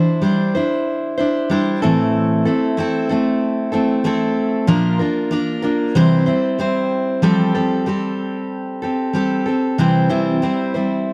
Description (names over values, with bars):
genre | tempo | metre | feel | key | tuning
pop | 94 BPM | 4/4 | swing 60% on 16ths | F major | A4 = 439 Hz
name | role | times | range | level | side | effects
picked steel-string acoustic guitar | solo | 0.0-11.1 s | A2 to C5 | -18 LUFS | equal | none
room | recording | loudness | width
moderate spring reverb, RT60 2.4 s | dark, warm production | -18 LUFS | mono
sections
0.0-7.2 A section; 7.2-11.1 B section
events
none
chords
0.0 Cadd9; 1.8 Am; 4.7 Bb; 6.0 C; 7.2 Fadd9; 9.8 C